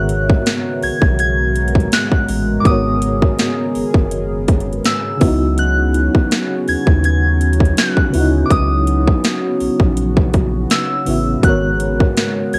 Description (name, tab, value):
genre	contemporary R&B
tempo	82 BPM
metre	4/4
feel	swing 54% on 16ths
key	G# minor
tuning	A4 = 440 Hz
part	soft synth bell	melody	0.0-12.6 s	D6 to G#6	-24 LUFS	equal	chorus, cassette tape
part	FM electric piano with tremolo	accompaniment	0.0-12.6 s	G#2 to E5	-23 LUFS	equal	cassette tape, plate reverb
part	chorused pulse-width pad	sustained chords	0.0-12.6 s	C#3 to A#4	-24 LUFS	equal	cassette tape
part	warm sub bass	bass	0.0-12.6 s	F#1 to D#2	-21 LUFS	equal	none
part	trap drum kit	drums	0.1-12.6 s	hi-hat, kick drum, snare drum	-18 LUFS	equal	overdrive, cassette tape
room	light reverb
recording	home recording on cassette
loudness	-16 LUFS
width	mono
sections	0.0-12.6 A section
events	none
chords	0.0 G#m11; 5.2 C#m11; 11.4 G#m11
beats	0.46 1.19 1.92 | 2.65 3.38 4.12 4.85 | 5.58 6.31 7.04 7.78 | 8.51 9.24 9.97 10.70 | 11.43 12.16